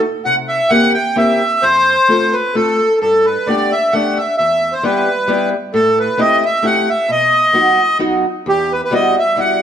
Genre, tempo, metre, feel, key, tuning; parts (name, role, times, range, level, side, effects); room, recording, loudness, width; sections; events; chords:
musette; 131 BPM; 3/4; straight; E harmonic minor; A4 = 443 Hz
fingerpicked steel-string acoustic guitar; accompaniment; 0.0-9.6 s; E2 to A4; -18 LUFS; left 1 dB
accordion; melody; 0.2-9.6 s; G4 to G5; -13 LUFS; equal
moderate recital hall reverb, RT60 1.6 s; close, detailed microphones; -12 LUFS; side -9 dB against mid
0.0-9.6 A section
0.2 C7; 1.6 F; 3.0 Gadd9; 4.4 Em; 5.7 Am7; 7.1 B; 8.5 Emadd9